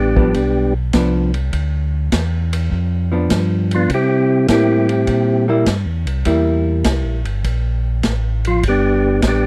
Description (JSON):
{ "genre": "soul jazz organ trio", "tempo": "101 BPM", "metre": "4/4", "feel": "swing 69% on 8ths", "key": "G mixolydian", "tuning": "A4 = 439 Hz", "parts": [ { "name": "percussive tonewheel organ", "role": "melody", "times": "0.0-9.5 s", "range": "F3 to G4", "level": "-18 LUFS", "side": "equal", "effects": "chorus vibrato, fast rotary speaker" }, { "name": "mellow tonewheel organ", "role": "bass", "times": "0.0-9.5 s", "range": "G1 to C3", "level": "-21 LUFS", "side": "equal", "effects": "overdrive, chorus vibrato, slow rotary speaker" }, { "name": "vintage hollow-body jazz guitar", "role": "accompaniment", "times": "0.2-7.2 s", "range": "F3 to E4", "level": "-20 LUFS", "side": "equal", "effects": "none" }, { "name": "vintage drum kit", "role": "drums", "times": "0.2-9.4 s", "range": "hi-hat, kick drum, ride cymbal, snare drum", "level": "-24 LUFS", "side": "equal", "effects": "none" } ], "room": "little or no reverb", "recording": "dry, close 1970s-style studio recording", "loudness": "-17 LUFS", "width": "mono", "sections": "0.0-9.5 A section", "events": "tonewheel organ solo 0.0-9.5", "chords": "0.0 G7; 3.9 C7; 8.6 G" }